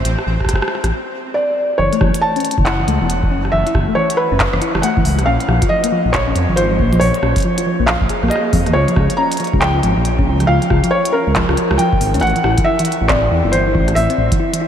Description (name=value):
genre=IDM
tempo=138 BPM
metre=4/4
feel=swing 62% on 16ths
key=unclear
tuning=A4 = 439 Hz
part: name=felt-muted upright piano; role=melody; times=0.0-14.7 s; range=A#4 to A#5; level=-18 LUFS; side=equal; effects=diffuse ambient delay
part: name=dark detuned saw bass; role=bass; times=0.0-14.3 s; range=E1 to E#2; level=-17 LUFS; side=equal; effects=tube saturation
part: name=pulsing gated texture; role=texture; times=0.0-0.9 s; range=C4 to C5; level=-32 LUFS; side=equal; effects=chorus, built-in reverb
part: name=glitchy drum kit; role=drums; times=0.1-14.6 s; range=handclaps, hi-hat, rim click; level=-23 LUFS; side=equal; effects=diffuse ambient delay
part: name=electronic kick drum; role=drums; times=0.4-14.4 s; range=none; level=-19 LUFS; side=equal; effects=none
part: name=thumb-piano-like synth pluck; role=arpeggios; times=1.8-14.7 s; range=E3 to G#4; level=-20 LUFS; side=left 1 dB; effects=chorus, tape echo
room=wet huge ambient reverb, RT60 7.3 s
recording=dreamy mix soaked in reverb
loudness=-13 LUFS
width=side -9 dB against mid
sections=0.0-1.8 A section; 1.8-14.7 B section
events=none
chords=0.0 Am; 1.8 F#7(no3); 5.3 A#m7; 8.7 C#6; 12.2 A7(no3)